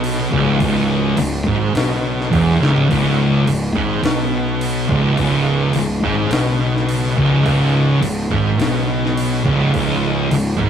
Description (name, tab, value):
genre	stoner and doom metal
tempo	105 BPM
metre	4/4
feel	straight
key	unclear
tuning	A4 = 441 Hz
part	phased string machine	sustained chords	0.0-10.7 s	C#3 to D#4	-31 LUFS	left 1 dB	none
part	thick fuzz guitar	riff	0.0-10.7 s	C#2 to B2	-20 LUFS	left 4 dB	distortion
part	thick fuzz guitar	riff	0.0-10.7 s	C#2 to B2	-17 LUFS	right 2 dB	distortion
part	fuzz fingered electric bass	bass	0.0-10.7 s	C#1 to B1	-23 LUFS	equal	overdrive, tube saturation
part	breakbeat sampler-style drum kit	drums	0.0-10.7 s	crash cymbal, kick drum, snare drum, toms	-24 LUFS	left 1 dB	none
room	light reverb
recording	rough rehearsal-room recording, tube saturation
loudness	-14 LUFS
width	side -8 dB against mid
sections	0.0-2.9 A section; 2.9-10.7 B section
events	drum fill 2.6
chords	0.0 C#m; 2.9 C#5